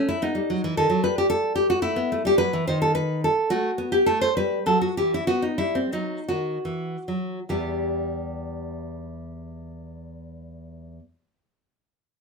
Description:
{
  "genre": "classical, baroque-style dance for nylon-string guitar",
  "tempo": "47-75 BPM (dotted quarters)",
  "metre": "6/8",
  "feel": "rubato",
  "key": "E minor",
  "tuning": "A4 = 440 Hz",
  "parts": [
    { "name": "nylon-string guitar", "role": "solo", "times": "0.0-11.0 s", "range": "E2 to C5", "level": "-22 LUFS", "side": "equal", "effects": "none" }
  ],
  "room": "moderate studio reverb, RT60 0.6 s",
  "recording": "minimal, uncompressed stereo recording",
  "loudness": "-22 LUFS",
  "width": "side -4 dB against mid",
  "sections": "0.0-7.5 A section; 7.5-12.2 B section",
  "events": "slowing down 2.6-7.5",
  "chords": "0.2 B; 1.0 N.C.; 1.8 A5; 2.6 N.C.; 3.5 B5/A; 4.3 Em; 5.3 B (rootless); 7.5 Em",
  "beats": "| 0.23 1.03 | 1.84 2.65 | 3.48 4.34 | 5.27 6.30 | 7.51 8.75 | 9.98"
}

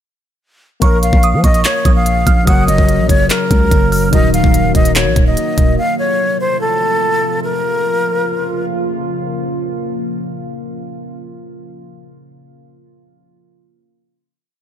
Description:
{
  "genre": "hip hop, trap",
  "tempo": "145 BPM",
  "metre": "4/4",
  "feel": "half-time",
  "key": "Bb harmonic minor",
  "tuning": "A4 = 439 Hz",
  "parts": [
    { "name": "breathy mellow silver concert flute", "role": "melody", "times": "0.8-8.6 s", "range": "A4 to Gb5", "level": "-17 LUFS", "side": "left 1 dB", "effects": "none" },
    { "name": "glassy synth bell", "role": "second line", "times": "0.8-4.1 s", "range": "Db6 to F6", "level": "-22 LUFS", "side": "right 4 dB", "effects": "chorus, ping-pong delay" },
    { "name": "tine electric piano", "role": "accompaniment", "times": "0.8-5.8 s", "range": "Eb3 to F5", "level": "-20 LUFS", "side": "left 6 dB", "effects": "wide subtle chorus" },
    { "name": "deep dark ambient pad", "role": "sustained chords", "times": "1.5-10.6 s", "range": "C3 to Gb4", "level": "-22 LUFS", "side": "right 1 dB", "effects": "chorus, built-in reverb" },
    { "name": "growling 808-style bass", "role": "bass", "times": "0.8-5.8 s", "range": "Eb1 to F3", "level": "-16 LUFS", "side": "equal", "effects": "none" },
    { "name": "trap drum kit", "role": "drums", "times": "0.8-5.7 s", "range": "handclaps, hi-hat, kick drum", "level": "-13 LUFS", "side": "equal", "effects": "none" }
  ],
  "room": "little or no reverb",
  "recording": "none",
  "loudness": "-12 LUFS",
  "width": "side -10 dB against mid",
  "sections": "0.8-7.4 hook; 7.4-10.7 final chord",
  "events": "none",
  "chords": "0.8 Bbm; 2.5 Gb; 4.1 Ebm; 5.8 F; 7.4 Bbm",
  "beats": "| 0.82 1.23 1.65 2.06 | 2.47 2.89 3.30 3.71 | 4.13 4.54 4.96 5.37 | 5.78 6.20 6.61 7.03 | 7.44 7.85 8.27 8.68 | 9.09 9.51 9.92 10.34"
}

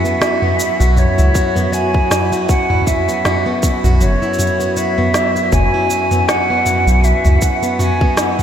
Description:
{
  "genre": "folktronica",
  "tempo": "79 BPM",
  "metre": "4/4",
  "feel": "swing 56% on 16ths",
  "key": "unclear",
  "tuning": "A4 = 441 Hz",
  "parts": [
    { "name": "hollow concert flute", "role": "melody", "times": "0.0-8.3 s", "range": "C#5 to G#5", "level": "-18 LUFS", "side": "equal", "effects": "analog delay" },
    { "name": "picked plugged-in swing-style acoustic guitar", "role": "arpeggios", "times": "0.0-8.4 s", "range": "F#2 to F#4", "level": "-19 LUFS", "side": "equal", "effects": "analog delay" },
    { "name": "organic electronic drum kit", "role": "drums", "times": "0.1-8.4 s", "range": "shaker, snare drum, toms", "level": "-19 LUFS", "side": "equal", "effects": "none" },
    { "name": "warm sub bass", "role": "bass", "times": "0.8-7.4 s", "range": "F#1 to C#2", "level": "-12 LUFS", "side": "equal", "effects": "none" },
    { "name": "electronic kick drum", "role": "drums", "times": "1.4-8.1 s", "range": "none", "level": "-16 LUFS", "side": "equal", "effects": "none" }
  ],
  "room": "moderate huge ambient reverb, RT60 8.7 s",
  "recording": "dreamy mix soaked in reverb",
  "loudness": "-12 LUFS",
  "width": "side -9 dB against mid",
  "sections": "0.0-8.4 A section",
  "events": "none",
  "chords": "0.0 F#7sus4",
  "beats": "0.21 0.97 1.73 | 2.49 3.25 4.00 4.76 | 5.52 6.28 7.04 7.80"
}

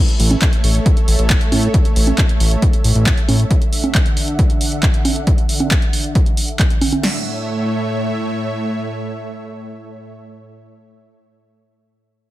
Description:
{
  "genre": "uplifting trance",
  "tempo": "136 BPM",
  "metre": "4/4",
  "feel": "straight",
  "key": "A major",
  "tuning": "A4 = 441 Hz",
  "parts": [
    { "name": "supersaw pad", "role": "sustained chords", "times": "0.0-10.1 s", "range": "A2 to F#5", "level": "-23 LUFS", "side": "right 1 dB", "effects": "sidechain pumping, low-pass filter" },
    { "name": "punchy analog drum machine", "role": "drums", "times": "0.1-7.0 s", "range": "congas, handclaps, hi-hat", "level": "-20 LUFS", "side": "right 2 dB", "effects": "none" },
    { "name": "fat analog bass", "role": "bass", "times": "0.2-3.4 s", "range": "A1 to A2", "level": "-15 LUFS", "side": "equal", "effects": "sidechain pumping" },
    { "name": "big-room dance drum kit", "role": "drums", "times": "0.4-7.1 s", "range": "crash cymbal, kick drum, snare drum", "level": "-15 LUFS", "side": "equal", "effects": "overdrive" }
  ],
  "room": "digital ambience",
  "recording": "none",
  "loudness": "-14 LUFS",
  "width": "side -15 dB against mid",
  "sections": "0.0-7.0 A section; 7.0-10.6 B section",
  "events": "filter sweep on supersaw synth 0.0-7.0",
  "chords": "0.0 A; 3.5 Dadd9; 7.0 A",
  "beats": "0.42 0.86 1.30 | 1.74 2.18 2.62 3.06 | 3.50 3.95 4.39 4.83 | 5.27 5.71 6.15 6.59 | 7.04 7.48 7.92 8.36 | 8.80 9.24 9.68 10.12"
}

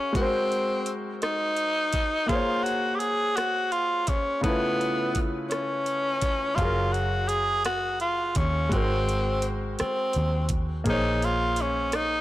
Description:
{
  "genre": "slow six-eight R&B",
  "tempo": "56 BPM (dotted quarters)",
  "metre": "6/8",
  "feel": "straight",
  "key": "unclear",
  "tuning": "A4 = 440 Hz",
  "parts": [
    { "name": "raspy tenor saxophone", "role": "melody", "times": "0.0-12.2 s", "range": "Cb4 to Ab4", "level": "-26 LUFS", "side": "equal", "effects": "none" },
    { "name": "clear concert grand piano", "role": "accompaniment", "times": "0.0-12.2 s", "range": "Db3 to F5", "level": "-30 LUFS", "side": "left 2 dB", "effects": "none" },
    { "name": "smooth R&B drum kit", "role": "drums", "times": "0.2-12.1 s", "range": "hi-hat, kick drum, rim click", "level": "-30 LUFS", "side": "equal", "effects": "soft clipping on snare" },
    { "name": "vintage muted fingered electric bass", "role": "bass", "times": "6.6-12.2 s", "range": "Gb1 to Eb2", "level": "-28 LUFS", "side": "equal", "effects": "transformer saturation" }
  ],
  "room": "light reverb, small room ambience",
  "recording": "blown-out, overdriven recording, overdrive",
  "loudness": "-23 LUFS",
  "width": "side -15 dB against mid",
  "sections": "0.0-12.2 A section",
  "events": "none",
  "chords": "0.1 Ab9; 2.3 Bbm9; 4.4 Db7alt; 6.6 Gbmaj9; 8.7 Ab9; 10.9 Bbm9",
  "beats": "| 0.15 1.22 | 2.29 3.37 | 4.44 5.51 | 6.58 7.65 | 8.72 9.79 | 10.87 11.94"
}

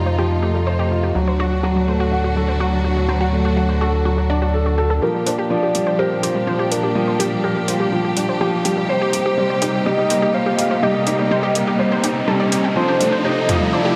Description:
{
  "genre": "piano and strings electronica",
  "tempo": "124 BPM",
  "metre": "4/4",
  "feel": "straight",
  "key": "G minor",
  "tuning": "A4 = 440 Hz",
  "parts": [
    { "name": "warm symphonic string section", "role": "sustained chords", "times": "0.0-14.0 s", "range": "A2 to A4", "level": "-26 LUFS", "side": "equal", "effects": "none" },
    { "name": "felt-muted upright piano", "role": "riff", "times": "0.0-14.0 s", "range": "F3 to F#5", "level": "-23 LUFS", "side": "equal", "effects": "delay" },
    { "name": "round analog bass", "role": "bass", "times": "0.0-5.0 s", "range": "D2 to F2", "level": "-22 LUFS", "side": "equal", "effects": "none" },
    { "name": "unison pluck", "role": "arpeggios", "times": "0.1-13.9 s", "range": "F#3 to G5", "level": "-27 LUFS", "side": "equal", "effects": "delay" },
    { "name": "warm velvety synth lead", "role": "melody", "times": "5.0-14.0 s", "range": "Bb4 to F5", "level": "-24 LUFS", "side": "equal", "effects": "chorus, tremolo, delay" },
    { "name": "riser", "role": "sound effects", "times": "9.8-14.0 s", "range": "none", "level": "-30 LUFS", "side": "equal", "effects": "none" },
    { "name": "deep house drum kit", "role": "drums", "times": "5.3-13.6 s", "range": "hi-hat, toms", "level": "-26 LUFS", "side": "equal", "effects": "none" }
  ],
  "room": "wet recital hall reverb, RT60 1.6 s, digital ambience",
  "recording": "none",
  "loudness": "-18 LUFS",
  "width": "mono",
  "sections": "0.0-5.0 A section; 5.0-14.0 B section",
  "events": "build-up 5.0-14.0; riser 9.8-14.0",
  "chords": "0.0 F7; 1.2 D; 5.0 Gm7; 8.9 Cm7; 12.8 F7",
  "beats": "0.18 0.67 | 1.15 1.64 2.12 2.60 | 3.09 3.57 4.05 4.54 | 5.02 5.51 5.99 6.47 | 6.96 7.44 7.93 8.41 | 8.89 9.38 9.86 10.35 | 10.83 11.31 11.80 12.28 | 12.76 13.25 13.73"
}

